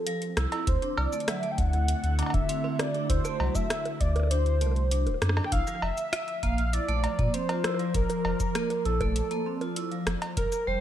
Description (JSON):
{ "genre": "IDM", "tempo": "99 BPM", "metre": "4/4", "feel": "straight", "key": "unclear", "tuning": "A4 = 440 Hz", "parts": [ { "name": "warm velvety synth lead", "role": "melody", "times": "0.0-10.8 s", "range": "A4 to G5", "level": "-31 LUFS", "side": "equal", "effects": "chorus, digital delay" }, { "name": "glassy FM pad", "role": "sustained chords", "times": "0.0-10.8 s", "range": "D3 to D5", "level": "-35 LUFS", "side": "left 1 dB", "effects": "ensemble chorus, built-in reverb" }, { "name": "vibraphone with medium hard mallets", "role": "arpeggios", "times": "0.1-10.8 s", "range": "F3 to F4", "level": "-35 LUFS", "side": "right 4 dB", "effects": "ping-pong delay" }, { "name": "electro analog drum machine", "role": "drums", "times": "0.1-10.6 s", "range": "bongos, cowbell, hi-hat, rim click, shaker", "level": "-33 LUFS", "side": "equal", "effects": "studio reverb" }, { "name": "warm sub bass", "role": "bass", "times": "0.4-10.8 s", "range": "D1 to Bb2", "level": "-27 LUFS", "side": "equal", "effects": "tube saturation" }, { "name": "electronic kick drum", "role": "drums", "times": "0.7-10.5 s", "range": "none", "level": "-30 LUFS", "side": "equal", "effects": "studio reverb" } ], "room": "light reverb", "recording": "none", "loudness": "-25 LUFS", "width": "side -11 dB against mid", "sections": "0.0-10.8 A section", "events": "none", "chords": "0.0 Fadd9; 0.7 D; 5.5 Bbmaj7" }